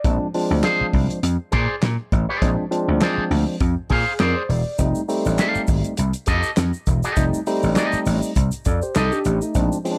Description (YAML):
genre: funk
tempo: 101 BPM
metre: 4/4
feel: swing 56% on 16ths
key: F mixolydian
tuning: A4 = 440 Hz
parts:
  - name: barky tine electric piano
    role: stabs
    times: 0.0-10.0 s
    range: F3 to D5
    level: -26 LUFS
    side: equal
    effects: overdrive, phaser, plate reverb
  - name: vintage slap bass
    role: bass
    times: 0.0-9.7 s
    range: E1 to Bb2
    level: -23 LUFS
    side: equal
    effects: none
  - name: warm soul drum kit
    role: drums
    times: 0.0-10.0 s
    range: handclaps, hi-hat, kick drum, snare drum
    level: -26 LUFS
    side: equal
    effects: none
  - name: electric guitar with an envelope filter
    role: accompaniment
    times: 0.6-9.2 s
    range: G4 to F5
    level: -26 LUFS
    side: equal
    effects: plate reverb
  - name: tube shaker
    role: percussion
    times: 4.8-10.0 s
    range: none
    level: -40 LUFS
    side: equal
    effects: none
room: light reverb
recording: none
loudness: -21 LUFS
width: mono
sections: 0.0-10.0 A section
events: tine electric piano fill 3.6-4.8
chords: 0.0 Bb9; 4.8 F9